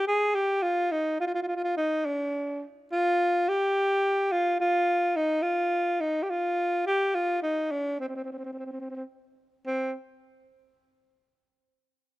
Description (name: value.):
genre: persian.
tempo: 71 BPM (dotted quarters).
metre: 6/8.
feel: straight.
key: unclear.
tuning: A4 = 440 Hz.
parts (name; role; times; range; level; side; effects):
breathy alto saxophone; solo; 0.0-9.9 s; C4 to Ab4; -25 LUFS; equal; none.
room: small room reverb.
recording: rough home demo mix.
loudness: -25 LUFS.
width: side -17 dB against mid.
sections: 0.0-9.7 A section; 9.7-11.4 B section.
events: none.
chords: none.